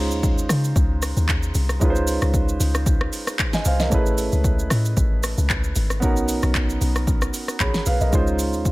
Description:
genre	amapiano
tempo	114 BPM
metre	4/4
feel	swing 55% on 16ths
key	Db major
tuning	A4 = 440 Hz
part	dark grand piano	accompaniment	0.0-8.7 s	Ab3 to Cb6	-25 LUFS	right 2 dB	none
part	deep log drum bass	bass	0.0-8.7 s	G#1 to Db3	-22 LUFS	equal	none
part	deep house drum kit	drums	0.1-8.7 s	handclaps, hi-hat, kick drum, rim click, shaker, snare drum	-22 LUFS	equal	none
room	little or no reverb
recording	none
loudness	-18 LUFS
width	side -20 dB against mid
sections	0.0-8.7 A section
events	grand piano fill 7.3-8.1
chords	0.0 Dbmaj9; 3.9 Amaj9; 6.0 Cbmaj9; 8.1 Dbmaj9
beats	0.23 0.76 1.29 | 1.81 2.34 2.87 3.39 | 3.92 4.44 4.97 5.50 | 6.02 6.55 7.08 7.60 | 8.13 8.65

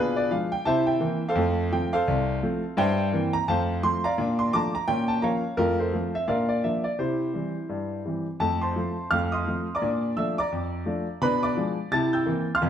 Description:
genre	jazz, stride piano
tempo	171 BPM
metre	4/4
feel	swing 59% on 8ths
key	F major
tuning	A4 = 440 Hz
part	clear concert grand piano	solo	0.0-12.7 s	F1 to A6	-23 LUFS	equal	none
room	wet stone room reverb, RT60 1.0 s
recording	band playing live in one room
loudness	-23 LUFS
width	side -9 dB against mid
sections	0.0-8.4 A section; 8.4-12.7 A section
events	none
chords	0.0 Bdim7; 0.7 C7; 1.4 F; 2.8 C7/G; 3.5 F; 4.2 Bbmaj7; 4.9 Bbm; 5.6 F; 6.3 Bb; 7.0 C; 8.4 F; 9.1 F7; 9.8 Bbmaj7; 11.2 Bdim7; 11.9 C7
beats	0.31 0.66 1.01 | 1.36 1.72 2.07 2.42 | 2.77 3.12 3.48 3.83 | 4.18 4.53 4.88 5.24 | 5.59 5.94 6.29 6.64 | 7.00 7.35 7.70 8.05 | 8.40 8.75 9.10 9.46 | 9.81 10.16 10.51 10.86 | 11.21 11.56 11.91 12.26 | 12.61

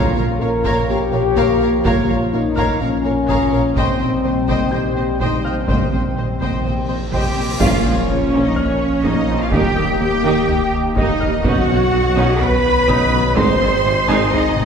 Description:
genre	cinematic, hybrid orchestral and electronic film score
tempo	125 BPM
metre	4/4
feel	straight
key	Bb dorian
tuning	A4 = 439 Hz
part	warm symphonic violin section	second line	0.0-14.7 s	C5 to C6	-26 LUFS	left 2 dB	none
part	rich symphonic viola section	accompaniment	0.0-14.3 s	C3 to Db5	-24 LUFS	right 1 dB	none
part	warm French horn section	sustained chords	0.0-14.7 s	C4 to C5	-22 LUFS	left 3 dB	none
part	warm analog pad	sustained chords	0.0-14.7 s	Eb3 to Eb5	-25 LUFS	left 1 dB	chorus
part	glassy wavetable pluck	arpeggios	0.0-14.2 s	C3 to B4	-27 LUFS	equal	none
part	saturated sub bass	bass	0.0-14.7 s	Eb1 to B1	-26 LUFS	equal	none
part	clear grand piano	texture	0.0-14.7 s	Ab4 to Bb6	-32 LUFS	left 1 dB	tape echo
part	bright symphonic double bass section	bass	0.2-14.2 s	Ab1 to Eb2	-26 LUFS	right 2 dB	none
part	rich symphonic cello section	bass	0.2-14.7 s	Bb2 to C5	-22 LUFS	right 2 dB	none
part	taiko ensemble	drums	0.6-14.7 s	none	-24 LUFS	equal	none
part	cymbal swell and impact	sound effects	6.7-9.5 s	none	-27 LUFS	equal	none
part	clear symphonic violin section	melody	7.1-14.7 s	Db5 to C6	-28 LUFS	left 3 dB	none
part	warm tuba	bass	7.6-14.2 s	Ab1 to Eb2	-25 LUFS	right 2 dB	none
room	wet scoring stage reverb, RT60 1.5 s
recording	heard from further back in the room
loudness	-14 LUFS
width	side -6 dB against mid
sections	0.0-7.6 A section; 7.6-14.7 B section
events	cymbal swell 6.7-7.6; band accent 7.6-8.1; impact 7.6-9.5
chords	0.0 Bbm; 3.8 Cm/Bb; 7.6 Bbm; 9.5 Eb; 11.4 Badd9; 13.4 Ab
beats	0.41 0.89 1.37 | 1.85 2.33 2.81 3.29 | 3.77 4.25 4.73 5.21 | 5.69 6.17 6.65 7.13 | 7.61 8.09 8.57 9.05 | 9.53 10.01 10.49 10.97 | 11.45 11.93 12.41 12.89 | 13.37 13.85 14.33

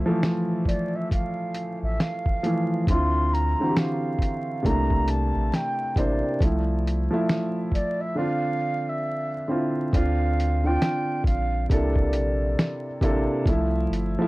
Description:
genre	lo-fi hip hop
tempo	68 BPM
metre	4/4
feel	swing 62% on 16ths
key	D minor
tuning	A4 = 440 Hz
part	warm upright piano	accompaniment	0.0-14.3 s	C3 to C5	-26 LUFS	equal	cassette tape, low-pass filter
part	soft dub sub bass	bass	0.0-14.2 s	G1 to D2	-25 LUFS	equal	none
part	lo-fi sampler-style drum kit	drums	0.2-14.2 s	hi-hat, kick drum, snare drum	-24 LUFS	equal	none
part	mellow silver concert flute	melody	0.7-13.0 s	D5 to C6	-30 LUFS	right 1 dB	low-pass filter, analog delay
room	light reverb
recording	dry, gritty hardware recording, vinyl crackle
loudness	-22 LUFS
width	side -20 dB against mid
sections	0.0-9.9 A section; 9.9-14.3 B section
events	none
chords	0.0 Fmaj7; 2.9 Dm9; 4.6 C13; 6.4 Fmaj7/C; 8.2 Dm9; 9.9 Dm7; 11.7 C13; 13.5 Fmaj7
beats	0.23 1.11 1.99 | 2.87 3.75 4.64 5.52 | 6.40 7.28 8.17 9.05 | 9.93 10.81 11.70 12.58 | 13.46

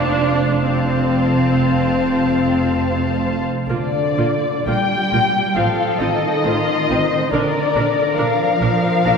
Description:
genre	classical, slow romantic movement for string orchestra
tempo	57-72 BPM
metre	4/4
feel	rubato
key	Bb major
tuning	A4 = 438 Hz
part	muted symphonic violin section	melody	0.0-9.2 s	D5 to A5	-21 LUFS	left 5 dB	none
part	muted chamber violin section	second line	0.0-9.2 s	F4 to F5	-24 LUFS	left 1 dB	none
part	muted symphonic viola section	accompaniment	0.0-9.1 s	Bb3 to Bb4	-21 LUFS	equal	none
part	muted symphonic cello section	bass	0.0-9.2 s	F2 to G3	-23 LUFS	right 2 dB	none
part	muted symphonic double bass section	bass	0.0-9.1 s	F1 to Bb1	-23 LUFS	right 3 dB	none
room	wet church reverb, RT60 3.7 s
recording	none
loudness	-15 LUFS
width	side -6 dB against mid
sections	0.0-3.7 A section; 3.7-9.2 A section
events	none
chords	0.0 F; 3.7 Bb; 5.6 F7/A; 7.3 Bb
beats	0.63 1.66 2.66 | 3.68 4.67 5.56 6.45 | 7.33 8.17 9.04

